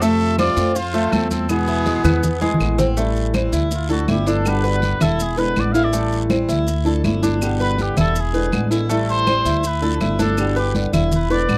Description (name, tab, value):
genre	latin, Cuban son and guajira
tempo	162 BPM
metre	4/4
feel	straight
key	A minor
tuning	A4 = 444 Hz
part	trumpet with cup mute	melody	0.0-11.6 s	F4 to F5	-27 LUFS	equal	none
part	brilliant trumpet	second line	0.0-2.6 s	B3 to A4	-31 LUFS	equal	none
part	flamenco guitar	accompaniment	0.0-11.6 s	B2 to G4	-24 LUFS	equal	none
part	Cuban tres	arpeggios	0.0-11.6 s	G#3 to B4	-26 LUFS	equal	none
part	upright bass	bass	0.0-11.6 s	E1 to F2	-24 LUFS	equal	none
part	congas	percussion	0.0-11.6 s	none	-26 LUFS	equal	none
part	guiro	percussion	0.0-11.6 s	none	-39 LUFS	equal	none
part	maracas	percussion	0.0-11.6 s	none	-36 LUFS	equal	none
part	claves	percussion	0.4-11.6 s	none	-36 LUFS	equal	none
room	little or no reverb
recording	dry, close 1970s-style studio recording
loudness	-19 LUFS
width	mono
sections	0.0-3.0 A section; 3.0-11.6 B section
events	drum fill 2.4-3.0; muted trumpet solo 3.0-11.6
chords	0.0 F; 1.5 E; 3.0 Am7; 3.7 Dmadd9; 4.5 G; 5.2 E7; 5.9 Am7; 6.7 Dmadd9; 7.4 G; 8.2 E7; 8.9 Am7; 9.6 Dmadd9; 10.4 G